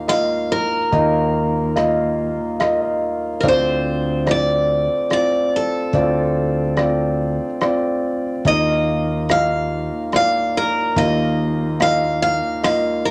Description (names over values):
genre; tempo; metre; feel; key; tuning
acoustic folk-pop ballad; 72 BPM; 3/4; straight; unclear; A4 = 437 Hz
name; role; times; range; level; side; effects
picked steel-string acoustic guitar; melody; 0.0-13.1 s; A4 to F5; -23 LUFS; equal; none
dark concert grand piano; accompaniment; 0.0-13.1 s; D2 to F5; -22 LUFS; equal; none
cloth-damped thuddy drum kit; drums; 0.1-12.8 s; hi-hat, kick drum, rim click; -27 LUFS; equal; none
fretless electric bass; bass; 0.9-12.4 s; D2 to Eb2; -25 LUFS; equal; none
room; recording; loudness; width
moderate large studio reverb, RT60 0.9 s; none; -19 LUFS; mono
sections
0.0-13.1 A section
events
none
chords
0.0 Ebsus2; 3.4 Dm7; 8.5 Ebsus2